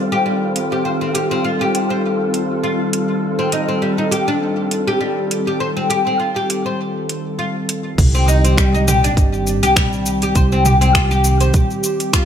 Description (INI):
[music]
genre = organic downtempo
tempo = 101 BPM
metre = 4/4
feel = swing 55% on 16ths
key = C dorian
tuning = A4 = 439 Hz
[part]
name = warm analog pad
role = sustained chords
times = 0.0-12.3 s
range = Eb3 to A4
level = -21 LUFS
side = equal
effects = chorus, sidechain pumping
[part]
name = wind-like tuned noise texture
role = texture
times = 0.0-8.0 s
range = C4 to F4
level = -27 LUFS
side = equal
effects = built-in reverb
[part]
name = oud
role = arpeggios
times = 0.1-12.3 s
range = G3 to C5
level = -19 LUFS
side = left 2 dB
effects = digital delay
[part]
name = deep house drum kit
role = drums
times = 0.6-12.3 s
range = crash cymbal, finger snaps, hi-hat, shaker, toms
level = -20 LUFS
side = right 1 dB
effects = overdrive, small room reverb
[part]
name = upright bass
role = bass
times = 8.0-11.5 s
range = G1 to C2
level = -16 LUFS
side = right 1 dB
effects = sidechain pumping
[part]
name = electronic kick drum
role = drums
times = 8.0-12.3 s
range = none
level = -15 LUFS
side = equal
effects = small room reverb
[sound]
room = moderate lush hall reverb, RT60 1.7 s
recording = none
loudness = -15 LUFS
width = side -9 dB against mid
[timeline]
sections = 0.0-8.0 A section; 8.0-12.3 B section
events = none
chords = 0.0 Cm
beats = 0.26 | 0.85 1.45 2.04 2.64 | 3.23 3.82 4.42 5.01 | 5.61 6.20 6.79 7.39 | 7.98 8.58 9.17 9.76 | 10.36 10.95 11.55 12.14